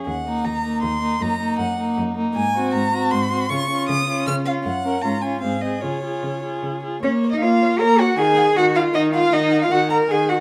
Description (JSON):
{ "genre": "quick classical-period movement for string quartet", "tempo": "156 BPM", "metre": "3/4", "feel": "straight", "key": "Db major, Bb minor from 7.0 s", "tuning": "A4 = 437 Hz", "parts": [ { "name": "dark violin", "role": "second line", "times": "0.0-10.4 s", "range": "Eb4 to Bb5", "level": "-26 LUFS", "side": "equal", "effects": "none" }, { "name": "dark viola", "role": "accompaniment", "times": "0.0-10.4 s", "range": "Eb3 to F4", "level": "-26 LUFS", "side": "equal", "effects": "none" }, { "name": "warm violin", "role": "melody", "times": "0.1-10.4 s", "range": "Db5 to F6", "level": "-28 LUFS", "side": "equal", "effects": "none" }, { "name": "clear cello", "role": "bass", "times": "0.1-10.4 s", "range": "Eb2 to Bb4", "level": "-25 LUFS", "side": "equal", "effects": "none" } ], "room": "light reverb", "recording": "close, detailed microphones", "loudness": "-20 LUFS", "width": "mono", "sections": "0.0-7.0 A section; 7.0-10.4 B section", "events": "none", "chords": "0.1 Ebm; 1.2 Ebm/Gb; 2.4 Ab7; 3.5 Db; 4.7 Gb; 5.0 Db/Ab; 5.4 Ab; 5.8 Db; 7.0 Bbm; 8.2 Ebm; 9.3 Ebmadd11", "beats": "| 0.07 0.46 0.84 | 1.22 1.60 1.98 | 2.37 2.75 3.13 | 3.51 3.89 4.28 | 4.66 5.05 5.44 | 5.84 6.24 6.64 | 7.03 7.42 7.80 | 8.18 8.56 8.95 | 9.33 9.72 10.11" }